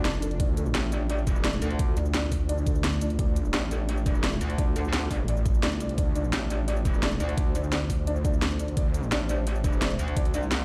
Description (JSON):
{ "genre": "dark technical drum and bass", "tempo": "172 BPM", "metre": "4/4", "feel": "straight", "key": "D minor", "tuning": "A4 = 442 Hz", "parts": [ { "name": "dark analog pad", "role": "sustained chords", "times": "0.0-10.6 s", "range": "A3 to D5", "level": "-37 LUFS", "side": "equal", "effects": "chorus, sidechain pumping" }, { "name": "metallic wobble bass", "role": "bass", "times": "0.0-10.6 s", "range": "E1 to D2", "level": "-31 LUFS", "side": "equal", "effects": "distortion, chorus" }, { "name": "detuned saw bass", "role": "bass", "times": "0.0-9.1 s", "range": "F1 to D2", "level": "-30 LUFS", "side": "equal", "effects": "chorus, overdrive" }, { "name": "drum and bass drum kit", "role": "drums", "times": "0.0-10.6 s", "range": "hi-hat, shaker, snare drum", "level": "-33 LUFS", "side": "equal", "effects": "overdrive" }, { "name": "felt-muted upright piano", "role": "arpeggios", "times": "0.1-10.4 s", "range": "D4 to D5", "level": "-37 LUFS", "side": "equal", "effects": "sidechain pumping, delay" }, { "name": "electronic kick drum", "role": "drums", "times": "0.4-10.2 s", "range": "none", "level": "-28 LUFS", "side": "equal", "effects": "overdrive" } ], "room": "light reverb", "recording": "played on a big sound system in a bare room, large studio reverb", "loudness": "-26 LUFS", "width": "mono", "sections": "0.0-10.6 A section", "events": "none", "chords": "0.0 Dm" }